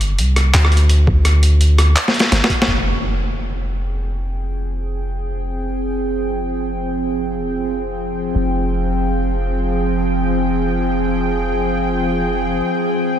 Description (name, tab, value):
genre	half-time drum and bass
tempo	free time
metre	none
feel	none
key	F dorian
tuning	A4 = 440 Hz
part	long sustained 808-style bass	bass	0.0-12.6 s	F1 to D2	-18 LUFS	equal	none
part	boom bap sampler-style drum kit	drums	0.0-2.7 s	handclaps, hi-hat, rim click, snare drum	-18 LUFS	equal	none
part	electronic kick drum	drums	1.1-2.6 s	none	-19 LUFS	equal	overdrive
part	bowed-like drone	sustained chords	3.9-13.2 s	F3 to G5	-19 LUFS	equal	built-in reverb, sidechain pumping
part	impact	sound effects	2.7-4.1 s	none	-26 LUFS	equal	none
room	light reverb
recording	none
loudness	-16 LUFS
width	side -10 dB against mid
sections	0.0-2.7 A section; 2.7-13.2 B section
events	drum fill 2.0-2.7; band accent 2.6; impact 2.7-4.1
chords	0.0 N.C.; 2.7 Fmadd9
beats	free time